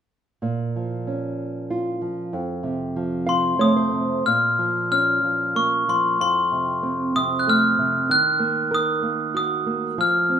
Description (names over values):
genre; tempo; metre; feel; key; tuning
children's music, lullaby; 94 BPM; 3/4; rubato; Bb harmonic minor; A4 = 440 Hz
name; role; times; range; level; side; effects
nylon-string guitar; accompaniment; 0.4-10.4 s; F2 to F5; -24 LUFS; right 2 dB; none
glockenspiel with hard plastic mallets; melody; 3.3-10.4 s; C6 to Gb6; -19 LUFS; left 1 dB; none
room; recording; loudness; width
moderate recital hall reverb, RT60 1.4 s; minimal, uncompressed stereo recording; -19 LUFS; side -8 dB against mid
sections
0.4-4.3 A section; 4.3-10.4 B section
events
nylon-string guitar fill 3.0-4.3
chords
0.4 Bbm; 2.3 F; 4.3 Bbm; 6.2 F; 8.1 Ebm